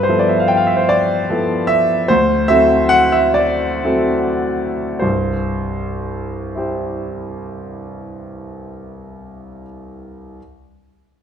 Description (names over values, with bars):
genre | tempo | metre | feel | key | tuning
classical, impressionist solo piano | 32-50 BPM (dotted quarters) | 6/8 | rubato | C major | A4 = 440 Hz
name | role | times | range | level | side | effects
clear concert grand piano | solo | 0.0-10.4 s | C2 to G5 | -16 LUFS | equal | none
room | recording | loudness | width
moderate recital hall reverb, RT60 1.5 s | dark, warm production | -14 LUFS | side -8 dB against mid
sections
0.0-5.0 A section; 5.0-8.2 B section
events
slowing down 0.0-5.0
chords
0.0 G13; 2.1 D9; 5.0 C